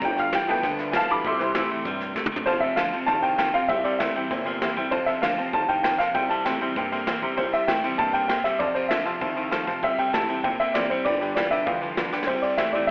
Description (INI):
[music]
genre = rockabilly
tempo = 196 BPM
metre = 4/4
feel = straight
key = C mixolydian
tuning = A4 = 440 Hz
[part]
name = picked steel-string acoustic guitar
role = accompaniment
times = 0.0-12.9 s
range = F2 to F4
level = -34 LUFS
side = equal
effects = none
[part]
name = tack piano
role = accompaniment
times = 0.0-12.8 s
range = E3 to D6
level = -28 LUFS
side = equal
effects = none
[part]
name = electric guitar at the edge of break-up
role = riff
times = 0.0-12.9 s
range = F2 to Bb3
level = -30 LUFS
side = equal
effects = none
[part]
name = upright bass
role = bass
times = 0.0-12.8 s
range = F1 to G2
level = -35 LUFS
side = equal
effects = none
[part]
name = jazz brush drum kit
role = drums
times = 0.0-12.8 s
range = crash cymbal, kick drum, ride cymbal, snare drum, toms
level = -30 LUFS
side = equal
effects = none
[part]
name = dark upright piano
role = melody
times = 2.5-12.9 s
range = C5 to A5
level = -24 LUFS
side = equal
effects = none
[sound]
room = moderate echo chamber reverb, RT60 1.4 s, small room ambience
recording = telephone sound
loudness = -21 LUFS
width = side -35 dB against mid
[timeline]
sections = 0.0-2.5 A section; 2.5-12.3 B section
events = honky-tonk piano solo 0.0-2.5; drum fill 2.2-2.5, 12.1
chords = 0.0 G7; 1.2 C; 2.5 F; 3.7 C; 4.9 F; 6.1 C; 8.6 F; 9.8 C; 11.1 G7; 12.3 C